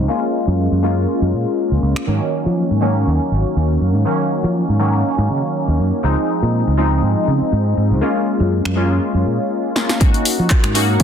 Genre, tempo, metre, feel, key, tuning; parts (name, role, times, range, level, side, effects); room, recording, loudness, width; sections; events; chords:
filtered disco house; 121 BPM; 4/4; swing 55% on 16ths; Ab mixolydian; A4 = 440 Hz
funky polysynth comp; accompaniment; 0.0-11.0 s; Eb3 to Gb4; -18 LUFS; left 1 dB; chorus, phaser, sidechain pumping, low-pass filter
fingered electric bass; bass; 0.0-11.0 s; Ab1 to F3; -17 LUFS; equal; sidechain pumping, low-pass filter
punchy analog drum machine; drums; 2.0-2.1, 8.7-11.0 s; finger snaps, handclaps, hi-hat, snare drum; -22 LUFS; left 1 dB; overdrive, sidechain pumping on hats
electronic kick drum; drums; 10.0-11.0 s; -14 LUFS; equal
light reverb; dense, heavily limited modern master; -15 LUFS; side -8 dB against mid
0.0-10.0 A section; 10.0-11.0 B section
filter sweep 0.0-10.0; drum fill 9.8; drop 10.0-11.0
0.1 Gbmaj7; 2.1 Ab9sus4; 6.0 Dbmaj7; 8.0 Gbmaj7; 10.0 Ab9sus4